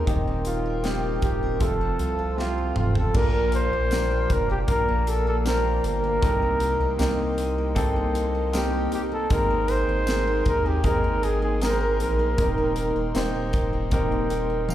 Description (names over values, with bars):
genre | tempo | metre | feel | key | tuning
pop ballad | 78 BPM | 4/4 | straight | Bb major | A4 = 440 Hz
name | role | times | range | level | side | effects
mellow flugelhorn | melody | 0.0-13.5 s | Eb4 to C5 | -26 LUFS | right 1 dB | slapback echo
warm concert grand piano | accompaniment | 0.0-14.7 s | Ab2 to G5 | -27 LUFS | equal | slapback echo
airy breathy pad | sustained chords | 0.0-14.7 s | Bb3 to D6 | -37 LUFS | right 1 dB | chorus
picked steel-string acoustic guitar | arpeggios | 0.0-14.7 s | Bb2 to Bb4 | -35 LUFS | left 2 dB | slapback echo, tape echo
saturated sub bass | bass | 0.0-14.7 s | Eb1 to Eb2 | -27 LUFS | equal | none
modern studio drum kit | drums | 0.1-14.7 s | crash cymbal, hi-hat, kick drum, snare drum, toms | -26 LUFS | equal | none
tambourine | percussion | 3.9-14.7 s | none | -42 LUFS | right 2 dB | none
room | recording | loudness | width
little or no reverb | live gig heard through the venue's PA, club reverb | -21 LUFS | side -12 dB against mid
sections
0.0-3.2 A section; 3.2-14.7 B section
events
drum fill 2.4-3.2; grand piano fill 13.9-14.7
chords
0.1 Eb6; 1.6 F; 3.2 Bb6; 6.2 Cm7; 9.3 Abadd9; 12.4 Eb6